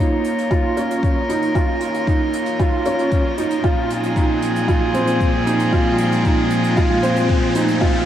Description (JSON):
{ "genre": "piano and strings electronica", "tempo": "115 BPM", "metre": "4/4", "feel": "straight", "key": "Bb minor", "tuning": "A4 = 440 Hz", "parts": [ { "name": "warm string quartet", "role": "sustained chords", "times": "0.0-8.1 s", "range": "Bb2 to Db5", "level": "-21 LUFS", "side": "equal", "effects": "sidechain pumping, low-pass filter" }, { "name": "felt-muted upright piano", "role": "riff", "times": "0.0-8.1 s", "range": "C4 to F4", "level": "-20 LUFS", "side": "right 2 dB", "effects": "ensemble chorus, tape echo" }, { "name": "hi-hat", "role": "drums", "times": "0.0-7.9 s", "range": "none", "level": "-39 LUFS", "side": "right 5 dB", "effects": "none" }, { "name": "riser", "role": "sound effects", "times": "0.1-8.1 s", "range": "none", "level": "-30 LUFS", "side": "left 1 dB", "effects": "none" }, { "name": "electronic kick drum", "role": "drums", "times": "0.5-7.9 s", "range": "none", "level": "-19 LUFS", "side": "left 1 dB", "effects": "none" } ], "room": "wet cathedral reverb, RT60 5.3 s", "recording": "dreamy mix soaked in reverb", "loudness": "-16 LUFS", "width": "side -10 dB against mid", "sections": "0.0-8.1 A section", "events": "build-up 0.0-8.1; riser 0.1-8.1", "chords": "0.0 Bbm; 3.6 Fm/Bb", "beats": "0.51 1.03 | 1.55 2.08 2.60 3.12 | 3.64 4.16 4.68 5.21 | 5.73 6.25 6.77 7.29 | 7.82" }